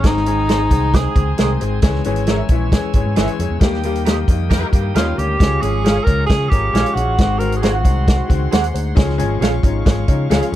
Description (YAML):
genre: uptempo 1960s-style soul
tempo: 134 BPM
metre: 4/4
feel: straight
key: Ab major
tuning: A4 = 439 Hz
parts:
  - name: warm tenor saxophone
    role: melody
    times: 0.0-1.4, 5.0-8.3 s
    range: Eb4 to Bb4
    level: -21 LUFS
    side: right 1 dB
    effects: tape echo
  - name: clear upright piano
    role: accompaniment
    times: 0.0-10.6 s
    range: Eb3 to C5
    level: -23 LUFS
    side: left 5 dB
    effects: none
  - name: bright tonewheel organ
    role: sustained chords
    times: 0.0-10.6 s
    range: Ab3 to Fb6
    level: -31 LUFS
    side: left 1 dB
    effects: slow rotary speaker, overdrive
  - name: fingered electric bass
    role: bass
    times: 0.0-10.6 s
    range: Ab1 to Db3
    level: -20 LUFS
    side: equal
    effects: none
  - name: warm soul drum kit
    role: drums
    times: 0.0-10.6 s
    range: hi-hat, kick drum, snare drum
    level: -16 LUFS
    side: equal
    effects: none
  - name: electric guitar through a small old amp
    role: stabs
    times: 0.5-10.4 s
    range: G4 to Gb5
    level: -25 LUFS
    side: right 4 dB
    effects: ensemble chorus
  - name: clear horn section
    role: second line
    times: 4.5-4.7 s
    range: Eb4 to Bb4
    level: -29 LUFS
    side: equal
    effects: tape echo
room: little or no reverb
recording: dark, warm production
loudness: -14 LUFS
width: side -13 dB against mid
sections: 0.0-10.6 A section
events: band accent 3.6-5.4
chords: 0.0 Ab; 1.8 Dbm; 3.6 Eb; 5.4 Db; 7.2 Ab7; 9.0 Db